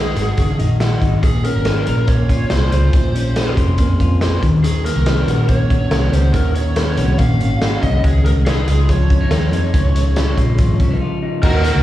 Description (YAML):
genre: jangly indie pop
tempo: 141 BPM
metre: 4/4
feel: straight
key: Db major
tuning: A4 = 441 Hz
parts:
  - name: lead guitar through a small cranked amp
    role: melody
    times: 0.0-11.8 s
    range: Ab4 to F5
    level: -25 LUFS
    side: right 1 dB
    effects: overdrive, slapback echo, tape echo
  - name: electric guitar through a small old amp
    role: arpeggios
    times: 0.0-11.8 s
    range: Bb2 to C5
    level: -21 LUFS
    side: left 2 dB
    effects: spring reverb, slapback echo, tape echo
  - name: vintage muted fingered electric bass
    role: bass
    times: 0.0-11.8 s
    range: F1 to F2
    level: -17 LUFS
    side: equal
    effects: none
  - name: raw garage drum kit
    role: drums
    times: 0.2-11.7 s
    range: crash cymbal, hi-hat, kick drum, snare drum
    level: -18 LUFS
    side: equal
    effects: none
  - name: overdriven combo organ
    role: accompaniment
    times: 11.4-11.8 s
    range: Bb3 to Bb4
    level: -22 LUFS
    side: equal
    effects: slapback echo
  - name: picked twelve-string acoustic guitar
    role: accompaniment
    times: 11.4-11.8 s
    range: Eb3 to Gb4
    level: -24 LUFS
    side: right 8 dB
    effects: slapback echo
room: light reverb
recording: live gig heard through the venue's PA, club reverb, small room ambience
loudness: -13 LUFS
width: side -14 dB against mid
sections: 0.0-11.4 A section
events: break 11.0-11.4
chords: 0.0 Cb6 (rootless); 1.2 Bbmadd9; 4.4 Ebm7; 8.0 Dbadd9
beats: 0.38 0.80 | 1.23 1.65 2.08 2.51 | 2.93 3.36 3.78 4.21 | 4.64 5.06 5.49 5.91 | 6.34 6.76 7.19 7.62 | 8.04 8.46 8.89 9.31 | 9.74 10.16 10.59 11.01 | 11.43